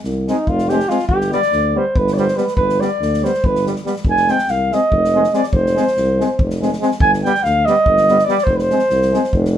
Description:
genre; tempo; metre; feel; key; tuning
balkan folk, Balkan brass band; 284 BPM (eighths); 7/8; straight; F dorian sharp4; A4 = 442 Hz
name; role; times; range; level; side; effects
mellow tuba; bass; 0.0-9.6 s; F1 to D2; -20 LUFS; equal; none
swinging big-band drum kit; percussion; 0.0-9.5 s; kick drum, snare drum; -23 LUFS; equal; none
mellow flugelhorn; melody; 0.3-9.5 s; Eb4 to Ab5; -16 LUFS; right 1 dB; none
brilliant trombone; accompaniment; 0.3-9.2 s; G3 to Ab3; -22 LUFS; right 3 dB; none
clear euphonium; accompaniment; 0.3-9.6 s; B3 to C4; -23 LUFS; left 7 dB; none
room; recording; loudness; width
moderate studio reverb, RT60 0.5 s; minimal, uncompressed stereo recording; -14 LUFS; side -10 dB against mid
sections
0.0-9.6 A section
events
flugelhorn solo 0.0-9.6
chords
0.0 Fm; 1.1 G; 4.1 Fm; 7.0 G; 8.5 Fm

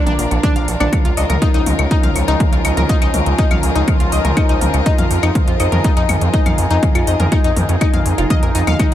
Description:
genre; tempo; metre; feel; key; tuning
melodic techno; 122 BPM; 4/4; straight; unclear; A4 = 441 Hz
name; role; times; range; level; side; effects
sweeping resonant pad; sustained chords; 0.0-8.9 s; F3 to Ab4; -23 LUFS; right 3 dB; chorus, phaser, sidechain pumping
rich studio string section; texture; 0.0-8.9 s; F4 to Eb5; -26 LUFS; left 5 dB; sidechain pumping
analog pluck; arpeggios; 0.1-8.9 s; D4 to F6; -21 LUFS; left 3 dB; chorus, sidechain pumping, tape echo
gritty driven synth bass; bass; 0.1-8.9 s; F1 to F2; -18 LUFS; equal; sidechain pumping
house drum kit; drums; 0.1-8.9 s; claves, hi-hat, toms; -23 LUFS; left 2 dB; overdrive, tape echo
electronic kick drum; drums; 0.4-8.9 s; none; -16 LUFS; equal; overdrive
room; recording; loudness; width
little or no reverb; echo-heavy mix; -13 LUFS; side -12 dB against mid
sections
0.0-8.9 A section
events
none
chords
0.0 Bb; 0.9 Dbadd9; 4.9 Fm7

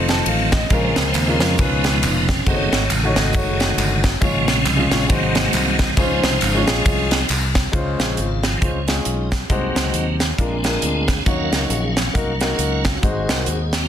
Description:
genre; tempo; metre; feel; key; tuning
uptempo gospel; 136 BPM; 4/4; swing 59% on 8ths; Db major; A4 = 440 Hz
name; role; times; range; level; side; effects
clear concert grand piano; accompaniment; 0.0-13.7 s; Ab2 to A5; -24 LUFS; left 2 dB; none
tonewheel organ; sustained chords; 0.0-13.9 s; Cb3 to F5; -22 LUFS; right 2 dB; slow rotary speaker, chorus vibrato
fingered electric bass; bass; 0.0-13.8 s; F1 to F2; -23 LUFS; equal; none
crisp fusion drum kit; drums; 0.1-13.8 s; hi-hat, kick drum, ride cymbal, snare drum; -20 LUFS; equal; soft clipping on kick
tambourine and handclaps; percussion; 0.7-7.6 s; none; -29 LUFS; right 2 dB; none
room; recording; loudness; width
light reverb, studio ambience; dense, heavily limited modern master; -16 LUFS; side -9 dB against mid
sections
0.0-7.7 A section; 7.7-13.9 B section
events
grand piano fill 0.0-0.7; tonewheel organ solo 0.0-7.7, 7.7-13.9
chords
0.0 F7; 0.7 Bbm7; 1.6 Db7; 2.5 Gbm6; 4.2 Db/Ab; 5.1 Ab7; 6.0 Dbmaj7; 9.5 Ab7/C; 10.4 Bb7; 11.3 Ebm7; 13.0 Ab7

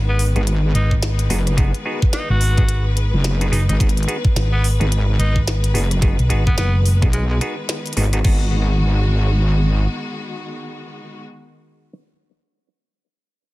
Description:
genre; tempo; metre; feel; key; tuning
glitch hop; 108 BPM; 4/4; swing 60% on 16ths; G# minor pentatonic; A4 = 436 Hz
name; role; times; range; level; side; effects
rich symphonic string section; sustained chords; 0.0-11.2 s; D#3 to B4; -28 LUFS; left 2 dB; vintage 12-bit sampler grit, sidechain pumping
hollow-body short-scale fingered electric bass; bass; 0.0-7.0 s; F#1 to B1; -17 LUFS; equal; none
raspy tenor saxophone; melody; 0.1-7.4 s; G#3 to F#4; -28 LUFS; equal; ping-pong delay
glitchy drum kit; drums; 0.2-8.4 s; crash cymbal, hi-hat, rim click, snare drum; -27 LUFS; left 1 dB; none
auto-wah clav; stabs; 0.4-11.9 s; B3 to G#4; -29 LUFS; equal; sidechain pumping, ping-pong delay
wobble bass; bass; 0.4-9.9 s; F#1 to B1; -17 LUFS; equal; chorus, tube saturation
electronic kick drum; drums; 0.9-8.4 s; none; -17 LUFS; equal; none
room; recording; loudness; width
digital ambience; none; -15 LUFS; side -18 dB against mid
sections
0.0-8.2 A section; 8.2-10.5 B section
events
drop 0.0-8.2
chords
0.0 G#m7

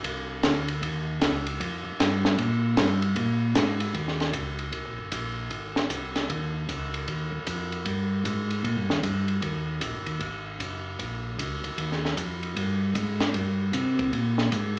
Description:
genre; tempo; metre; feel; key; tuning
soul jazz organ trio; 153 BPM; 4/4; swing 64% on 8ths; Eb mixolydian; A4 = 440 Hz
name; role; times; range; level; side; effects
mellow tonewheel organ; bass; 0.0-14.8 s; Gb1 to C3; -28 LUFS; equal; slow rotary speaker
compact cocktail drum kit; drums; 0.0-14.8 s; hi-hat, kick drum, ride cymbal, snare drum; -28 LUFS; equal; none
room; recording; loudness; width
moderate club reverb, RT60 0.6 s; live gig heard through the venue's PA, club reverb, small speaker sound; -25 LUFS; side -36 dB against mid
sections
0.0-3.9 A section; 3.9-14.8 B section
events
none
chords
none

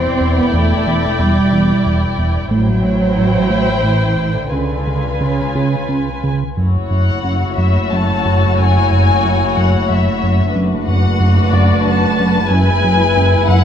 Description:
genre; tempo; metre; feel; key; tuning
cinematic, suspense film score; 91 BPM; 3/4; straight; F# minor from 6.6 s; A4 = 438 Hz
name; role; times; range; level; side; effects
muted chamber violin section; melody; 0.0-13.6 s; D5 to A5; -21 LUFS; left 3 dB; none
muted chamber violin section; second line; 0.0-13.6 s; E4 to D5; -20 LUFS; left 4 dB; none
fat analog bass; riff; 0.0-13.6 s; E2 to C#3; -16 LUFS; right 1 dB; none
muted chamber double bass section; bass; 0.0-13.6 s; E1 to C#2; -22 LUFS; right 1 dB; none
muted studio cello section; bass; 0.0-13.6 s; F#2 to C4; -20 LUFS; right 2 dB; none
muted chamber viola section; accompaniment; 6.6-13.6 s; G#3 to E4; -21 LUFS; right 3 dB; none
room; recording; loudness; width
moderate scoring stage reverb, RT60 1.6 s; dark, warm production; -12 LUFS; side -9 dB against mid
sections
0.0-6.6 A section; 6.6-13.6 B section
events
none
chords
0.0 Em7; 2.5 Am7; 4.5 C#7; 6.6 F#m7; 10.5 Bm7/F#; 12.5 E/F#

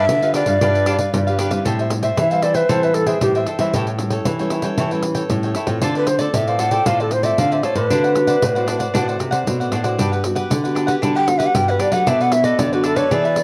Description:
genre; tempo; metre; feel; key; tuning
samba and choro; 115 BPM; 4/4; straight; A minor; A4 = 439 Hz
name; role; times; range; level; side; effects
breathy hollow shakuhachi; melody; 0.0-13.4 s; F#4 to G5; -21 LUFS; equal; cassette tape, plate reverb, tape echo
cavaquinho; accompaniment; 0.0-13.4 s; D4 to G5; -26 LUFS; equal; plate reverb
nylon-string guitar; accompaniment; 0.0-13.4 s; F#2 to B4; -29 LUFS; equal; none
nylon-string guitar; bass; 0.0-13.4 s; G2 to F#3; -24 LUFS; equal; none
pandeiro; percussion; 0.1-13.4 s; none; -26 LUFS; equal; none
room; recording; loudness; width
light reverb; home recording on cassette; -18 LUFS; mono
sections
0.0-1.7 A section; 1.7-13.4 B section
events
shakuhachi solo 1.7-13.4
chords
0.0 G7; 1.7 Am7; 3.7 A7; 5.8 Dm7; 7.9 D7; 10.0 Gmaj7; 12.1 Bm7

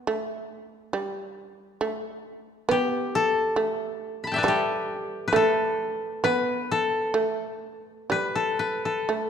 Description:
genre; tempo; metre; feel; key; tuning
japanese traditional, Japanese chamber music; 60-70 BPM; 4/4; rubato; A suspended pentatonic; A4 = 440 Hz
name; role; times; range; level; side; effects
shamisen; second line; 0.0-9.3 s; G3 to B3; -27 LUFS; right 3 dB; none
koto; melody; 2.7-9.3 s; G4 to B5; -25 LUFS; left 3 dB; none
room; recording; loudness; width
moderate concert hall reverb, RT60 1.9 s; dark, warm production; -24 LUFS; side -8 dB against mid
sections
0.0-9.3 A section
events
none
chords
none

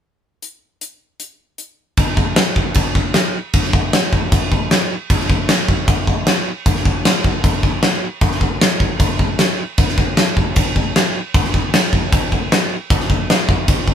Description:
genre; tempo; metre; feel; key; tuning
rock; 154 BPM; 4/4; straight; none; none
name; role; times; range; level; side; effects
gated 80s drum kit; drums; 0.4-13.9 s; crash cymbal, hi-hat, kick drum, snare drum; -14 LUFS; equal; none
room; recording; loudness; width
moderate studio reverb, RT60 0.6 s; band playing live in one room; -14 LUFS; side -9 dB against mid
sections
0.4-2.0 A section; 2.0-13.9 B section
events
none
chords
none

